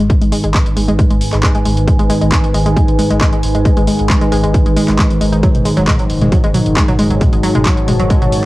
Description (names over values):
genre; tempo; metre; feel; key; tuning
driving peak-time techno; 135 BPM; 4/4; straight; G# phrygian; A4 = 440 Hz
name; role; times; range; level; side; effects
analog pluck; riff; 0.0-8.3 s; F#3 to D#4; -18 LUFS; equal; chorus, sidechain pumping, cassette tape, analog delay
warm sub bass; bass; 0.0-8.3 s; F#1 to G#1; -19 LUFS; equal; overdrive, sidechain pumping, low-pass filter
analog drone; drone; 0.0-8.5 s; G#2 to D#3; -17 LUFS; equal; chorus, sidechain pumping, cassette tape
deep dark ambient pad; texture; 0.2-8.5 s; D#4 to A5; -22 LUFS; right 1 dB; chorus, built-in reverb, sidechain pumping, cassette tape
electronic kick drum; drums; 0.1-8.2 s; none; -13 LUFS; equal; overdrive, small room ambience
techno drum kit; drums; 0.1-8.4 s; handclaps, hi-hat, toms; -20 LUFS; equal; overdrive, small room ambience
breakbeat sampler-style drum kit; drums; 5.4-8.4 s; hi-hat, snare drum; -33 LUFS; equal; none
room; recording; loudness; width
light reverb, digital ambience; home recording on cassette; -10 LUFS; side -18 dB against mid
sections
0.0-8.5 A section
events
filter sweep on synth arpeggio sound 0.0-8.5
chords
0.0 G#m; 5.4 F#m